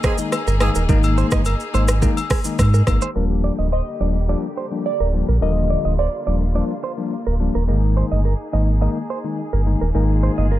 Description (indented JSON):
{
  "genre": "afrobeats",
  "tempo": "106 BPM",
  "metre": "4/4",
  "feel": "straight",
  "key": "Eb major",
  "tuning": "A4 = 440 Hz",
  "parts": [
    { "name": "glassy wavetable pluck", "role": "melody", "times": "0.0-7.4 s", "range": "D5 to Eb5", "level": "-26 LUFS", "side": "right 2 dB", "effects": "chorus, tape echo" },
    { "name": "warm horn section", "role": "second line", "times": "0.0-0.7 s", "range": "Eb3 to Ab4", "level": "-28 LUFS", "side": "right 2 dB", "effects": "none" },
    { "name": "rich studio string section", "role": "sustained chords", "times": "0.0-10.6 s", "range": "D3 to Ab4", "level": "-31 LUFS", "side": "left 1 dB", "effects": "none" },
    { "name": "direct-recorded clean electric guitar", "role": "riff", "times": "0.0-10.6 s", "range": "Ab4 to Eb5", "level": "-29 LUFS", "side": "right 8 dB", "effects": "tape echo" },
    { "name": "afro-pop drum kit", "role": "drums", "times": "0.0-3.1 s", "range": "hi-hat, kick drum, rim click, shaker", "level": "-20 LUFS", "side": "equal", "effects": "overdrive" },
    { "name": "bell-like tine electric piano", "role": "accompaniment", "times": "0.2-10.5 s", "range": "D3 to Eb4", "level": "-25 LUFS", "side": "left 5 dB", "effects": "none" },
    { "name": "agogo bells", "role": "percussion", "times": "0.3-3.0 s", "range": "none", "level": "-29 LUFS", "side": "left 6 dB", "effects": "none" },
    { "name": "sub bass with octave", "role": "bass", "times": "0.5-10.6 s", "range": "D1 to Ab2", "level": "-18 LUFS", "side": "equal", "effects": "none" }
  ],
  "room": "little or no reverb",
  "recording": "low-pass filter",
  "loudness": "-17 LUFS",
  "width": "side -14 dB against mid",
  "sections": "0.0-3.2 A section; 3.2-10.6 B section",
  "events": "filter sweep 3.2-10.6",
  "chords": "0.0 Absus2; 3.2 Ebmaj7; 7.7 Absus2"
}